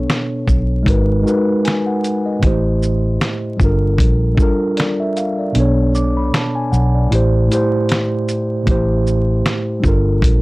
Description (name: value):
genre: lo-fi hip hop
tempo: 77 BPM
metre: 4/4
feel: swing 56% on 16ths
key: unclear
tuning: A4 = 438 Hz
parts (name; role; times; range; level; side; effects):
- mellow tine electric piano; accompaniment; 0.0-10.4 s; A2 to D6; -17 LUFS; equal; slow stereo tremolo, low-pass filter
- vintage muted fingered electric bass; bass; 0.0-10.4 s; G1 to B1; -16 LUFS; equal; tube saturation
- dusty soul sampler-style drum kit; drums; 0.1-10.4 s; finger snaps, hi-hat, kick drum, shaker, snare drum; -17 LUFS; equal; none
room: little or no reverb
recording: dry, gritty hardware recording, vinyl crackle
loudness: -14 LUFS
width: side -22 dB against mid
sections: 0.0-8.7 A section; 8.7-10.4 A section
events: kick muted 5.5-8.7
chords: 0.0 Bm7; 0.9 G#m7; 2.4 Am7; 3.6 Gm7; 5.5 Bm7; 7.1 Am7; 9.8 Gm7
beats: 0.10 0.87 1.65 | 2.43 3.21 3.99 4.77 | 5.55 6.33 7.11 7.89 | 8.67 9.45 10.22